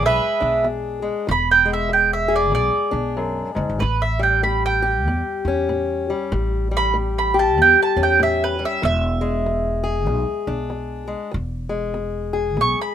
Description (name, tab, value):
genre	acoustic country blues, solo or duo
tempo	96 BPM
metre	4/4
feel	swing 61% on 8ths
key	E mixolydian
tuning	A4 = 439 Hz
part	mandolin	melody	0.0-12.9 s	B4 to C#6	-18 LUFS	right 4 dB	none
part	fingerpicked steel-string acoustic guitar	accompaniment	0.0-12.9 s	E2 to G#4	-23 LUFS	left 5 dB	none
part	upright bass	bass	0.0-12.7 s	E1 to E2	-24 LUFS	equal	none
room	light reverb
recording	rough home demo mix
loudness	-17 LUFS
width	side -9 dB against mid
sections	0.0-12.9 A section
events	none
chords	0.0 E7; 3.8 A7; 8.8 E7